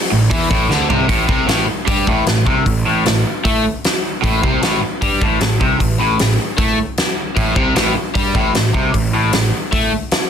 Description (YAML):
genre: hard rock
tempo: 153 BPM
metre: 4/4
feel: straight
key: A minor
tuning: A4 = 440 Hz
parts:
  - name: cranked stack guitar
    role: riff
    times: 0.1-9.9 s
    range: A2 to A3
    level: -18 LUFS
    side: right 7 dB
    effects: overdrive
  - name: overdriven semi-hollow guitar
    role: riff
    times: 0.1-9.9 s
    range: A2 to A3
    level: -19 LUFS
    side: left 10 dB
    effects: phaser
  - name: fuzz picked electric bass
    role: bass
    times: 0.1-9.9 s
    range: A1 to A2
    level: -22 LUFS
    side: equal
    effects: overdrive
  - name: huge arena drum kit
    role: drums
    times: 0.3-10.2 s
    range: hi-hat, kick drum, snare drum, toms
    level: -18 LUFS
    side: equal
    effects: none
room: light reverb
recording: dense, heavily limited modern master, faint mains hum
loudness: -13 LUFS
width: side -8 dB against mid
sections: 0.0-1.1 A section; 1.1-10.3 B section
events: drum fill 0.7-1.1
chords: 0.0 Am